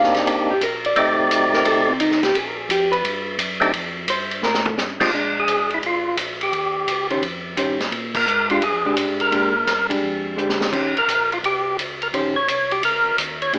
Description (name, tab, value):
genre	soul jazz organ trio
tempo	172 BPM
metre	4/4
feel	swing 65% on 8ths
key	Bb mixolydian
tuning	A4 = 439 Hz
part	percussive tonewheel organ	melody	0.0-13.5 s	Bb2 to D5	-22 LUFS	equal	slow rotary speaker, overdrive
part	vintage hollow-body jazz guitar	accompaniment	0.0-13.6 s	Eb3 to F5	-24 LUFS	equal	none
part	mellow tonewheel organ	bass	0.0-13.6 s	G1 to Bb2	-39 LUFS	equal	chorus vibrato, slow rotary speaker
part	vintage drum kit	drums	0.0-13.6 s	crash cymbal, hi-hat, kick drum, ride cymbal, snare drum, toms	-26 LUFS	equal	none
room	moderate large studio reverb, RT60 1.1 s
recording	AM radio sound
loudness	-20 LUFS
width	mono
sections	0.0-5.1 A section; 5.1-13.6 B section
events	hollow-body jazz guitar solo 0.0-5.1; drum fill 4.4-4.8, 10.4-10.7; band accent 8.1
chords	0.0 Cm7; 1.0 Cm69/A; 2.3 Bb5; 3.0 G; 3.7 Fadd9; 5.1 Bb9; 6.5 Eb13; 7.9 Bb6; 10.7 Eb6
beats	0.26 0.61 | 0.96 1.30 1.65 2.00 | 2.34 2.69 3.04 3.39 | 3.73 4.08 4.43 4.78 | 5.12 5.47 5.82 6.17 | 6.52 6.87 7.22 7.57 | 7.92 8.27 8.62 8.97 | 9.32 9.67 10.02 10.37 | 10.72 11.08 11.43 11.78 | 12.13 12.48 12.83 13.18 | 13.54